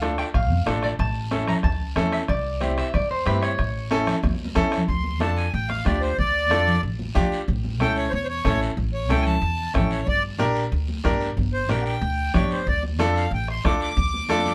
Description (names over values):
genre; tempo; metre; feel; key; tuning
latin, cumbia; 185 BPM; 4/4; straight; D harmonic minor; A4 = 440 Hz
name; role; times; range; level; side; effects
clean electric guitar; second line; 0.0-4.5 s; B4 to Bb5; -31 LUFS; equal; none
bright upright piano; accompaniment; 0.0-14.5 s; C4 to C#5; -28 LUFS; equal; none
upright bass; bass; 0.0-14.5 s; G1 to G2; -29 LUFS; equal; none
bombo; percussion; 0.0-14.5 s; none; -29 LUFS; equal; none
congas; percussion; 0.0-14.5 s; none; -32 LUFS; equal; none
guiro; percussion; 0.0-14.5 s; none; -41 LUFS; equal; none
accordion; melody; 4.9-14.5 s; C5 to D6; -28 LUFS; equal; none
room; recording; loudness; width
light reverb; none; -23 LUFS; mono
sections
0.0-4.9 A section; 4.9-14.5 B section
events
clean electric guitar solo 0.0-4.9; drum fill 4.2-4.9, 14.3; accordion solo 4.9-14.5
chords
0.0 Dm; 1.0 A; 2.3 C; 3.6 A; 4.9 Dm; 7.5 A; 10.1 Gm; 12.7 Dm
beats
0.02 0.34 0.67 | 0.99 1.32 1.64 1.97 | 2.29 2.62 2.94 3.27 | 3.59 3.91 4.24 4.56 | 4.89 5.21 5.54 5.86 | 6.18 6.51 6.83 7.16 | 7.48 7.80 8.13 8.45 | 8.78 9.10 9.43 9.75 | 10.07 10.40 10.72 11.05 | 11.37 11.70 12.02 12.35 | 12.67 13.00 13.32 13.65 | 13.97 14.30